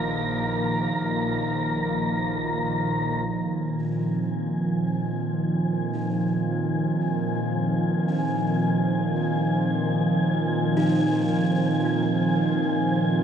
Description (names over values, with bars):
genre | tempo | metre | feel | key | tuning
ambient | free time | none | none | Bb mixolydian | A4 = 440 Hz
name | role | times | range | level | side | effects
airy breathy pad | sustained chords | 0.0-13.2 s | Bb2 to C4 | -23 LUFS | right 1 dB | chorus
clear studio double bass section | bass | 0.0-3.2 s | Bb1 | -36 LUFS | left 1 dB | tube saturation
wind-like tuned noise texture | texture | 0.0-13.2 s | Ab5 to Bb5 | -31 LUFS | left 2 dB | built-in reverb
buzzing kalimba | arpeggios | 3.8-13.2 s | D4 to Eb4 | -34 LUFS | right 2 dB | tape echo
room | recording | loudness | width
wet lush hall reverb, RT60 2.8 s | none | -22 LUFS | side -8 dB against mid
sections
0.0-3.3 A section; 3.3-13.2 B section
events
fade-in on kalimba 3.3-13.2; fade-in on synth texture 3.3-13.2; filter sweep on analog synth pad 3.3-13.2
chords
0.0 Bbsus4